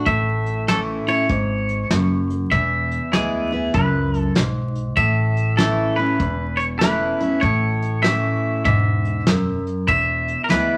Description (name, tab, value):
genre	honky-tonk and classic country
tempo	98 BPM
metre	4/4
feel	swing 64% on 8ths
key	A major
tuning	A4 = 439 Hz
part	picked steel-string acoustic guitar	accompaniment	0.0-10.8 s	E2 to E4	-24 LUFS	equal	none
part	twangy electric guitar	melody	0.1-10.8 s	G#4 to E5	-25 LUFS	equal	none
part	upright bass	bass	0.1-10.8 s	E1 to D2	-28 LUFS	equal	none
part	soft brush drum kit	drums	0.1-10.7 s	hi-hat, kick drum, snare drum	-24 LUFS	equal	none
room	moderate studio reverb, RT60 0.7 s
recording	vinyl crackle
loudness	-20 LUFS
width	mono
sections	0.0-10.8 A section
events	none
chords	0.1 A; 2.5 E; 5.0 A; 9.9 E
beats	| 0.07 0.68 1.29 1.91 | 2.52 3.13 3.75 4.36 | 4.97 5.59 6.20 6.81 | 7.43 8.04 8.66 9.27 | 9.88 10.50